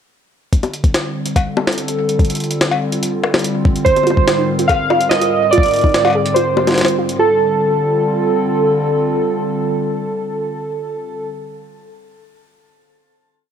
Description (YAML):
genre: IDM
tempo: 144 BPM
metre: 4/4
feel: straight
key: F major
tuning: A4 = 441 Hz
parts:
  - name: hollow soft pad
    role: sustained chords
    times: 0.8-11.3 s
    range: Ab2 to Bb4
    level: -20 LUFS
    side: equal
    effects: chorus, vintage 12-bit sampler grit, shimmer reverb
  - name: electronic kick drum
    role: drums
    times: 0.5-5.9 s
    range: none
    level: -14 LUFS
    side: left 1 dB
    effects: overdrive
  - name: jungle sampler-style drum kit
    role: drums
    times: 0.5-7.2 s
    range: bongos, cowbell, hi-hat, snare drum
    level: -18 LUFS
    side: left 2 dB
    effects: overdrive
  - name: warbly lo-fi synth keys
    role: melody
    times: 3.8-11.3 s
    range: A4 to F5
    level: -16 LUFS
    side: right 2 dB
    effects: chorus, tape echo, shimmer reverb
  - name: warbly dusty pluck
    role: arpeggios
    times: 4.1-7.4 s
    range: Eb4 to Ab4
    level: -21 LUFS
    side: right 4 dB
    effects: chorus, digital delay, shimmer reverb
room: moderate lush hall reverb, RT60 2.1 s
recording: none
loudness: -14 LUFS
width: side -8 dB against mid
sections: 0.5-7.2 groove; 7.2-10.5 final chord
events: none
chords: 0.5 F6; 3.9 Ab; 7.2 F6